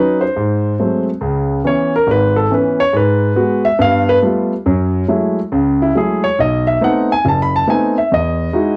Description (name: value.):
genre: solo jazz.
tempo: 140 BPM.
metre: 4/4.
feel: swing 65% on 8ths.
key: C# minor.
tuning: A4 = 440 Hz.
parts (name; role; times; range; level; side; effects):
warm concert grand piano; solo; 0.0-8.8 s; F#1 to B5; -15 LUFS; equal; cassette tape.
room: moderate studio ambience, RT60 0.5 s.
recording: home recording on cassette.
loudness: -15 LUFS.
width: mono.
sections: 0.0-1.2 A section; 1.2-8.8 B section.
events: grand piano solo 1.2-8.8.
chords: 0.4 G#7b9; 1.2 C#m7; 2.9 G#m7; 3.8 G9; 4.7 F#m9; 6.4 B7b9; 8.1 Emaj9.